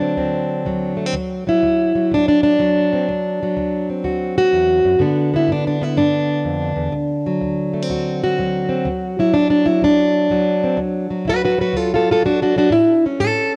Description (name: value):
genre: acoustic country blues, solo or duo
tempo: 124 BPM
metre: 4/4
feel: swing 67% on 8ths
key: D mixolydian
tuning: A4 = 440 Hz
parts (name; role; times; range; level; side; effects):
- fingerpicked plugged-in steel-string acoustic guitar; solo; 0.0-13.6 s; D2 to B4; -18 LUFS; equal; cassette tape
room: moderate lush hall reverb, RT60 2.6 s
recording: home recording on cassette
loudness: -18 LUFS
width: mono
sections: 0.0-13.6 A section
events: steel-string acoustic guitar solo 0.0-13.6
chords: 0.0 D7; 5.0 G7; 6.9 D7; 12.7 A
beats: 0.17 0.65 | 1.14 1.62 2.10 2.59 | 3.07 3.55 4.04 4.52 | 5.00 5.48 5.96 6.45 | 6.93 7.41 7.89 8.37 | 8.85 9.34 9.82 10.30 | 10.78 11.26 11.74 12.23 | 12.71 13.19